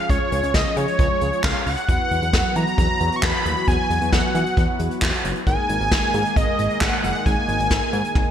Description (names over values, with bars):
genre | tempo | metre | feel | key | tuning
synth-pop | 134 BPM | 4/4 | straight | unclear | A4 = 441 Hz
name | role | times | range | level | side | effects
wide unison lead | melody | 0.0-8.3 s | C#5 to C#6 | -23 LUFS | equal | none
mellow synth brass | accompaniment | 0.0-8.3 s | E#3 to B4 | -29 LUFS | left 1 dB | chorus
fat analog bass | bass | 0.1-8.2 s | F#1 to E3 | -25 LUFS | equal | none
vintage brush drum kit | drums | 0.1-8.3 s | handclaps, hi-hat, kick drum, snare drum, toms | -22 LUFS | equal | gated reverb
chorused pulse-width pad | sustained chords | 1.9-8.3 s | D#3 to G#4 | -28 LUFS | right 1 dB | none
room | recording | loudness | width
light reverb, small room ambience | bright 1980s-style digital production | -18 LUFS | side -9 dB against mid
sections
0.0-8.3 A section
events
drum fill 8.2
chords
0.0 C#; 1.9 Esus2; 5.5 G#sus2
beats
| 0.10 0.54 0.99 1.44 | 1.89 2.33 2.78 3.23 | 3.68 4.12 4.57 5.02 | 5.47 5.92 6.36 6.81 | 7.26 7.71 8.15